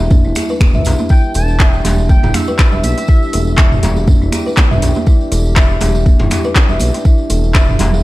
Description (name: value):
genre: afro house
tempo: 121 BPM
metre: 4/4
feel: swing 56% on 16ths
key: E minor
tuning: A4 = 436 Hz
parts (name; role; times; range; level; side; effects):
- dark analog pad; sustained chords; 0.0-8.0 s; G3 to G4; -25 LUFS; equal; wide subtle chorus, sidechain pumping
- smooth synth bass; bass; 0.0-8.0 s; E1 to E2; -16 LUFS; equal; tube saturation, sidechain pumping
- congas; percussion; 0.0-8.0 s; none; -23 LUFS; right 4 dB; none
- djembe; percussion; 0.0-8.0 s; none; -25 LUFS; left 2 dB; none
- tambourine; percussion; 0.0-8.0 s; none; -32 LUFS; right 3 dB; none
- kalimba; arpeggios; 0.1-7.9 s; D4 to E5; -21 LUFS; equal; sidechain pumping, tape echo
- deep house drum kit; drums; 0.1-7.9 s; finger snaps, handclaps, hi-hat, toms; -18 LUFS; equal; overdrive
- electronic kick drum; drums; 0.1-7.7 s; none; -10 LUFS; equal; none
- expressive synth lead; melody; 1.1-3.8 s; E5 to A5; -24 LUFS; right 1 dB; wide subtle chorus, tape echo
room: small room ambience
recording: dark, warm production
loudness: -10 LUFS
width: side -18 dB against mid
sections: 0.0-8.0 A section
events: none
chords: 0.0 Em7